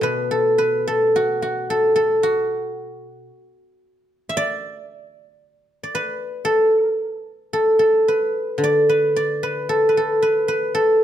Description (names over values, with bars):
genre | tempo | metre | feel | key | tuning
chinese traditional, Chinese solo plucked strings | 53-59 BPM | 2/4 | rubato | D gong mode | A4 = 439 Hz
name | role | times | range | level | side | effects
guzheng | solo | 0.0-11.0 s | B2 to E5 | -17 LUFS | equal | none
room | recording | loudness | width
light reverb | close, detailed microphones | -17 LUFS | side -11 dB against mid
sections
0.0-11.0 A section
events
none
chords
none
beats
| 0.03 1.14 | 2.23 3.29 | 4.34 5.37 | 6.40 7.47 | 8.59 9.69 | 10.74